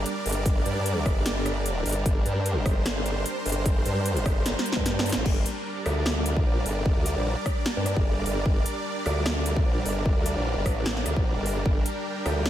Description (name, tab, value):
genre	heavy wobble dubstep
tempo	150 BPM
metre	4/4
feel	swing 54% on 16ths, half-time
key	G minor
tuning	A4 = 440 Hz
part	supersaw pad	sustained chords	0.0-12.5 s	G3 to G5	-30 LUFS	right 1 dB	sidechain pumping
part	formant-sweep wobble bass	bass	0.0-12.5 s	G1 to G2	-27 LUFS	equal	chorus, overdrive
part	big-room dance drum kit	drums	0.1-12.5 s	crash cymbal, hi-hat, rim click, snare drum	-31 LUFS	equal	none
part	electronic kick drum	drums	0.5-11.7 s	none	-25 LUFS	equal	none
room	light reverb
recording	none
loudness	-23 LUFS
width	side -12 dB against mid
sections	0.0-5.3 A section; 5.3-12.5 A section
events	drop 0.0-5.3, 5.3-12.5; drum fill 4.5-5.3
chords	0.0 Gm